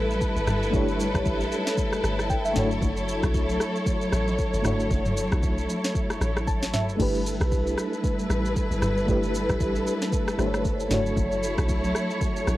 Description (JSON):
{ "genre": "amapiano", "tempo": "115 BPM", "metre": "4/4", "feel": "swing 58% on 16ths", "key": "unclear", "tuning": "A4 = 442 Hz", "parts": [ { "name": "FM electric piano with tremolo", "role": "accompaniment", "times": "0.0-12.6 s", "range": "A3 to A5", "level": "-30 LUFS", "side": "equal", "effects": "phaser" }, { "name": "warm studio string section", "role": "sustained chords", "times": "0.0-12.6 s", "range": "F#3 to C#5", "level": "-28 LUFS", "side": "equal", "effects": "none" }, { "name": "deep log drum bass", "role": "bass", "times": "0.0-12.6 s", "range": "F#1 to B1", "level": "-29 LUFS", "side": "equal", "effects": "none" }, { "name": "afro-pop drum kit", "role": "drums", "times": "0.1-12.6 s", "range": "crash cymbal, kick drum, rim click, shaker, snare drum, toms", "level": "-27 LUFS", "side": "equal", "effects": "cassette tape" } ], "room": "little or no reverb", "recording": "home recording on cassette", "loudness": "-23 LUFS", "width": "side -16 dB against mid", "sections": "0.0-7.0 A section; 7.0-12.6 A section", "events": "FM electric piano fill 6.2-7.0", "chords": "0.0 G69; 2.6 Dmaj9/F#; 7.0 G69; 10.9 Dmaj9/F#", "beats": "0.21 | 0.73 1.26 1.78 2.30 | 2.82 3.34 3.87 4.39 | 4.91 5.43 5.95 6.47 | 7.00 7.52 8.04 8.56 | 9.08 9.60 10.12 10.65 | 11.17 11.69 12.21" }